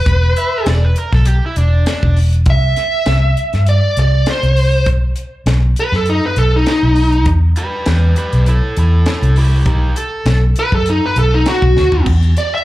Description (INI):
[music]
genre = straight-eighth soul blues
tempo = 100 BPM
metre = 4/4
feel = swing 54% on 16ths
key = E minor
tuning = A4 = 441 Hz
[part]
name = smooth overdriven lead guitar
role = melody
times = 0.0-12.6 s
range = D#4 to E5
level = -16 LUFS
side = equal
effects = slapback echo
[part]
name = vintage muted fingered electric bass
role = bass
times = 0.1-12.3 s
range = E1 to G2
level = -12 LUFS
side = equal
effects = none
[part]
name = tight funk drum kit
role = drums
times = 0.1-12.5 s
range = crash cymbal, hi-hat, kick drum, snare drum, toms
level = -20 LUFS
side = equal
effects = none
[part]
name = overdriven slide guitar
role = second line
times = 0.4-2.2, 7.6-10.4 s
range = D4 to E5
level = -22 LUFS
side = right 1 dB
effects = slapback echo, analog delay
[sound]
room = light reverb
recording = live gig heard through the venue's PA, club reverb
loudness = -11 LUFS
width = side -16 dB against mid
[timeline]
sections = 0.0-12.1 A section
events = drum fill 11.8-12.1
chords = 0.0 E5; 2.5 C; 4.9 B; 7.3 Em; 9.7 B; 12.1 E7(no3)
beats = | 0.06 0.67 1.27 1.87 | 2.47 3.07 3.67 4.27 | 4.87 5.47 6.07 6.67 | 7.27 7.87 8.47 9.07 | 9.67 10.27 10.87 11.47 | 12.07